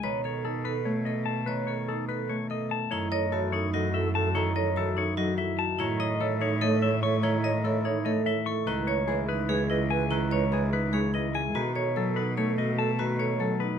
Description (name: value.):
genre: classical, minimalist pattern music.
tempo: 292 BPM (eighths).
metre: 7/8.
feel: straight.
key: F# dorian.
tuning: A4 = 440 Hz.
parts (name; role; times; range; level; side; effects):
clean electric guitar; melody; 0.0-13.8 s; G#4 to C#6; -32 LUFS; left 10 dB; none.
Celtic harp; accompaniment; 0.0-13.8 s; D#3 to A3; -32 LUFS; left 3 dB; none.
vibraphone with hard mallets; arpeggios; 0.0-13.8 s; D#4 to D#5; -31 LUFS; right 4 dB; none.
rich cello; bass; 0.0-13.8 s; C#2 to B2; -30 LUFS; right 2 dB; none.
alto flute; second line; 2.9-13.7 s; A4 to C#5; -34 LUFS; right 3 dB; none.
room: light reverb.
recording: close, detailed microphones.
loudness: -25 LUFS.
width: side -8 dB against mid.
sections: 0.0-2.9 A section; 2.9-13.8 A section.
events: none.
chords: 0.0 B7; 2.9 F#m7; 5.8 A; 8.7 C#m7; 11.5 B7.